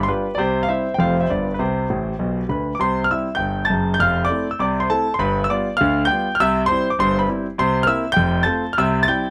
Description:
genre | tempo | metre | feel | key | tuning
jazz, stride piano | 200 BPM | 4/4 | swing 66% on 8ths | C major | A4 = 437 Hz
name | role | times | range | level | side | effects
clear concert grand piano | solo | 0.0-9.3 s | F1 to A6 | -20 LUFS | equal | none
room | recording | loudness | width
little or no reverb | close, detailed microphones | -20 LUFS | mono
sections
0.0-2.8 A section; 2.8-9.3 A section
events
grand piano fill 1.9-2.8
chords
0.4 C; 1.0 F; 1.3 G7; 1.6 C5; 2.8 C; 4.0 Fmaj7; 5.2 G7; 6.4 C; 7.6 C7; 8.2 F; 8.8 C

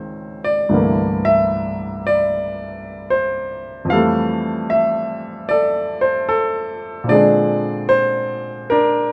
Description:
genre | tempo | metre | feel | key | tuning
solo jazz | 75 BPM | 4/4 | swing 66% on 8ths | F major from 3.9 s | A4 = 444 Hz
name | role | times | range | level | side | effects
warm grand piano | solo | 0.0-9.1 s | C2 to F5 | -19 LUFS | equal | none
room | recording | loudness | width
moderate studio reverb, RT60 0.7 s | none | -18 LUFS | mono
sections
0.0-3.9 A section; 3.9-9.1 B section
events
none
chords
0.0 Dbmaj7; 0.7 C13; 3.9 Fmaj9; 7.1 Bb9

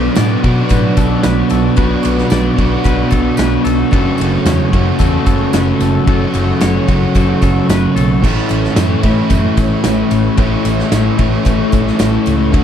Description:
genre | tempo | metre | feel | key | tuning
rock, shoegaze and dream pop | 112 BPM | 4/4 | straight | A major | A4 = 435 Hz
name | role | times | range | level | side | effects
warbly tape-like pad | sustained chords | 0.0-12.6 s | A4 to D6 | -26 LUFS | left 1 dB | chorus, built-in reverb
twangy electric guitar | arpeggios | 0.0-8.2 s | A4 to D5 | -26 LUFS | left 9 dB | wide subtle chorus, slapback echo
overdriven electric guitar | riff | 0.0-12.6 s | F#2 to F#4 | -17 LUFS | right 10 dB | reverse reverb
thick fuzz guitar | riff | 0.0-12.6 s | F#2 to D4 | -16 LUFS | left 7 dB | distortion, ensemble chorus
hollow-body short-scale fingered electric bass | bass | 0.0-12.6 s | F#1 to B2 | -18 LUFS | equal | none
loose indie drum kit | drums | 0.2-12.6 s | crash cymbal, kick drum, ride cymbal, snare drum | -17 LUFS | equal | none
tambourine | percussion | 0.2-12.6 s | none | -35 LUFS | right 10 dB | none
room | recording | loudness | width
light reverb, small room ambience | dark, warm production | -11 LUFS | side -9 dB against mid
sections
0.0-8.2 A section; 8.2-12.6 A section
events
none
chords
0.0 Bm; 3.9 F#m; 8.2 A

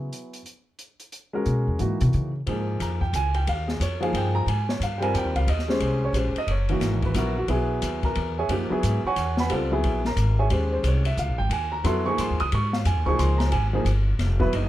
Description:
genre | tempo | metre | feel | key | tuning
modal jazz | 179 BPM | 3/4 | swing 63% on 8ths | unclear | A4 = 441 Hz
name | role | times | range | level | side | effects
warm grand piano | accompaniment | 0.0-14.7 s | Fb3 to Eb6 | -26 LUFS | right 1 dB | none
upright bass | bass | 0.0-14.7 s | F1 to Db3 | -24 LUFS | equal | none
open jazz drum kit | drums | 0.1-14.6 s | hi-hat, kick drum, ride cymbal, snare drum | -32 LUFS | left 2 dB | none
room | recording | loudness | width
light reverb | dark, warm production | -22 LUFS | side -14 dB against mid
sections
0.0-2.5 A section; 2.5-14.7 A section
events
upright bass solo 0.0-2.5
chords
0.0 Gb9sus4; 2.5 Eb9sus4; 6.5 Gb9sus4; 10.5 Eb9sus4

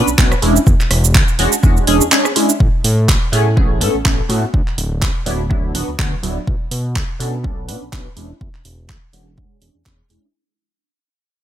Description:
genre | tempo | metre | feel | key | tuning
filtered disco house | 124 BPM | 4/4 | swing 55% on 16ths | E mixolydian | A4 = 440 Hz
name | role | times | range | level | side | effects
funky polysynth comp | accompaniment | 0.0-10.3 s | F#3 to B4 | -18 LUFS | equal | chorus, phaser, cassette tape, sidechain pumping, low-pass filter
fat analog bass | bass | 0.0-10.2 s | D1 to B2 | -18 LUFS | equal | sidechain pumping, low-pass filter
house drum kit | drums | 0.1-10.2 s | handclaps, hi-hat, rim click, shaker | -19 LUFS | right 3 dB | sidechain pumping on perc, sidechain pumping on hats
electronic kick drum | drums | 0.2-10.0 s | none | -16 LUFS | equal | overdrive
room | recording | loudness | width
little or no reverb | none | -13 LUFS | side -11 dB against mid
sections
0.0-2.6 A section; 2.6-10.3 B section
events
drop 0.0-2.6; fade-out 2.6-10.3; filter sweep 2.6-10.3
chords
0.4 E13; 2.6 Amaj9; 4.5 D69; 6.5 Bm9; 8.2 E13

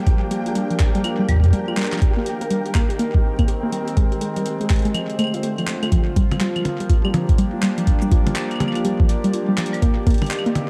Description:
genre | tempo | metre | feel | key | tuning
IDM | 123 BPM | 4/4 | swing 62% on 16ths | G minor | A4 = 442 Hz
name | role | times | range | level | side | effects
warbly tape-like pad | sustained chords | 0.0-10.7 s | D3 to D5 | -28 LUFS | equal | chorus, built-in reverb
warbly dusty pluck | arpeggios | 0.0-10.7 s | F3 to G4 | -26 LUFS | equal | chorus, digital delay
flickering grainy texture | texture | 0.0-5.9 s | G4 to G5 | -36 LUFS | equal | built-in reverb
electronic kick drum | drums | 0.1-10.2 s | none | -19 LUFS | equal | small room reverb
jungle sampler-style drum kit | drums | 0.1-10.7 s | claves, handclaps, hi-hat, shaker, toms | -30 LUFS | equal | small room reverb, delay
room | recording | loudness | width
moderate lush hall reverb, RT60 1.9 s | dark, warm production | -20 LUFS | mono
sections
0.0-5.9 A section; 5.9-10.7 B section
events
kick drops out 4.9-5.9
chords
0.0 Gm7; 2.0 Cm7; 4.0 Abmaj7; 4.9 Dm7; 5.9 Gm7; 9.8 Cm7

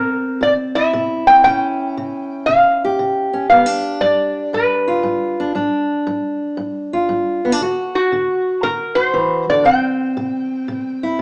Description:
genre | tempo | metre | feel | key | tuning
acoustic country blues, solo or duo | 117 BPM | 4/4 | swing 67% on 8ths | G mixolydian | A4 = 439 Hz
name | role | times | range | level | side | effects
metal-body resonator slide guitar | melody | 0.0-11.2 s | F#4 to G5 | -17 LUFS | equal | none
fingerpicked steel-string acoustic guitar | accompaniment | 0.0-11.2 s | G2 to G4 | -22 LUFS | equal | none
room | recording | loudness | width
moderate large studio reverb, RT60 1.1 s | band playing live in one room, small speaker sound | -17 LUFS | mono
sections
0.0-11.2 A section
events
none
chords
0.0 C7; 1.5 C#dim; 3.5 G7; 7.6 D7; 9.7 C5

